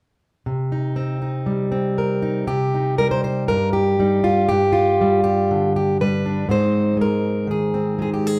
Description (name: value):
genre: folk, solo fingerstyle acoustic guitar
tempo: 120 BPM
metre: 4/4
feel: rubato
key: C minor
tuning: A4 = 442 Hz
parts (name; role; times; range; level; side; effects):
- fingerpicked plugged-in steel-string acoustic guitar; solo; 0.5-8.4 s; G2 to C5; -20 LUFS; equal; none
room: moderate large studio reverb, RT60 0.9 s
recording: band playing live in one room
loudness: -20 LUFS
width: mono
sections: 0.5-2.5 A section; 2.5-8.4 B section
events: none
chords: 0.5 Cm; 4.5 G; 6.5 Ab